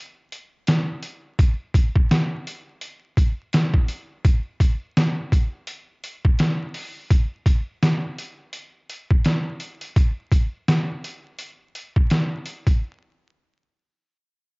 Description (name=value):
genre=hip hop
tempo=84 BPM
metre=4/4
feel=swing 56% on 16ths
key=none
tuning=none
part: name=trip hop sampler-style drum kit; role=drums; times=0.3-12.8 s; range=hi-hat, kick drum, snare drum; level=-18 LUFS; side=equal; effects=cassette tape
room=little or no reverb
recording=home recording on cassette, vinyl crackle, nothing above 7.5 kHz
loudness=-19 LUFS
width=side -35 dB against mid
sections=0.0-7.1 A section; 7.1-12.8 B section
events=none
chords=none